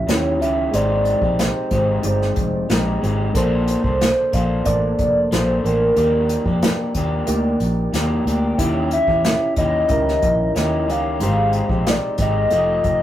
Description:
indie pop, bedroom pop; 92 BPM; 4/4; straight; A4 = 440 Hz
hollow clarinet-like synth lead; melody; 0.0-13.0 s; Bb4 to G5; -20 LUFS; equal; chorus
electric guitar through a small old amp; accompaniment; 0.0-13.0 s; Eb3 to C5; -23 LUFS; left 1 dB; warbly pitch drift
soft electric-piano-like synth keys; accompaniment; 0.0-13.0 s; Ab3 to Eb5; -27 LUFS; right 2 dB; chorus
vintage muted fingered electric bass; bass; 0.1-13.0 s; F1 to F2; -22 LUFS; equal
unplugged drum kit; drums; 0.1-13.0 s; hi-hat, kick drum, snare drum; -23 LUFS; equal
moderate small room reverb, RT60 0.5 s; rough rehearsal-room recording, warm saturation; -16 LUFS; side -12 dB against mid
0.0-13.0 A section
0.0 Eb7b9; 0.7 Abmaj7; 3.3 Bbmaj9; 6.0 Ebmaj7; 8.6 Eb7b9; 11.2 Abmaj7; 12.5 F9
0.07 | 0.73 1.38 2.04 2.69 | 3.35 4.00 4.66 5.31 | 5.97 6.62 7.28 7.93 | 8.59 9.24 9.90 10.55 | 11.21 11.87 12.52

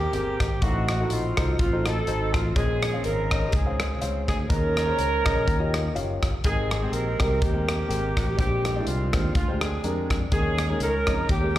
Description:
uptempo gospel; 124 BPM; 4/4; swing 56% on 8ths; Ab major; A4 = 440 Hz
breathy alto saxophone; melody; 0.0-11.6 s; Fb4 to Bb4; -31 LUFS; right 4 dB; slapback echo
dark horn section; melody; 0.0-11.6 s; Ab3 to Bb4; -30 LUFS; left 1 dB; slapback echo
fingered electric bass; bass; 0.0-11.6 s; Gb1 to F2; -27 LUFS; equal
warm upright piano; accompaniment; 0.1-11.6 s; Ab2 to G5; -31 LUFS; left 2 dB; slapback echo
modern studio drum kit; drums; 0.1-11.6 s; hi-hat, kick drum, rim click; -27 LUFS; equal
light reverb, studio reverb; live gig heard through the venue's PA, club reverb; -22 LUFS; side -13 dB against mid
0.0-11.6 A section
0.0 Abmaj9; 0.6 F7b9/A; 2.6 Bbm11; 4.5 Eb7sus4; 5.5 Eb9; 6.4 Abmaj9; 8.4 Bb13; 10.3 Eb7sus4
0.14 | 0.62 1.11 1.59 2.08 | 2.56 3.05 3.53 4.02 | 4.50 4.99 5.47 5.96 | 6.44 6.93 7.42 7.90 | 8.38 8.87 9.36 9.84 | 10.32 10.81 11.29

